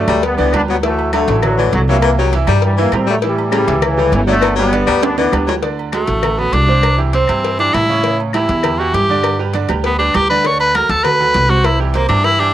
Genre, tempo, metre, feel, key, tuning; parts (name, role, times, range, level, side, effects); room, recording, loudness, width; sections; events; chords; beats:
latin, salsa; 200 BPM; 4/4; straight; D major; A4 = 442 Hz
bright trombone section; melody; 0.0-5.5 s; C#3 to D4; -17 LUFS; equal; cassette tape, plate reverb
bright grand piano; accompaniment; 0.0-12.5 s; C3 to E5; -21 LUFS; right 7 dB; plate reverb
breathy baritone saxophone; second line; 0.1-5.6 s; C#3 to G3; -18 LUFS; left 8 dB; plate reverb
upright bass; bass; 0.1-12.5 s; G1 to A2; -18 LUFS; equal
agogo bells and timbales; percussion; 0.1-12.5 s; -26 LUFS; right 9 dB
claves; percussion; 0.1-12.2 s; -27 LUFS; left 9 dB
congas; percussion; 0.1-12.5 s; -26 LUFS; equal
cowbell; percussion; 0.1-12.4 s; -24 LUFS; left 10 dB
edgy tenor saxophone; melody; 5.9-12.5 s; G3 to C#5; -14 LUFS; equal; cassette tape
light reverb; home recording on cassette; -12 LUFS; side -12 dB against mid
0.0-5.6 A section; 5.6-12.5 B section
drum fill 5.0-5.6; tenor saxophone solo 5.6-12.5
0.0 G; 0.8 Dadd9; 2.0 C7; 3.2 A7; 4.4 G; 5.6 D; 6.8 C; 8.0 A7; 9.2 G; 10.4 D; 11.6 C
0.23 0.53 | 0.83 1.13 1.43 1.73 | 2.03 2.33 2.63 2.93 | 3.23 3.53 3.83 4.13 | 4.43 4.73 5.03 5.33 | 5.63 5.93 6.23 6.53 | 6.83 7.13 7.43 7.73 | 8.04 8.34 8.64 8.94 | 9.24 9.54 9.84 10.14 | 10.44 10.74 11.04 11.35 | 11.65 11.95 12.25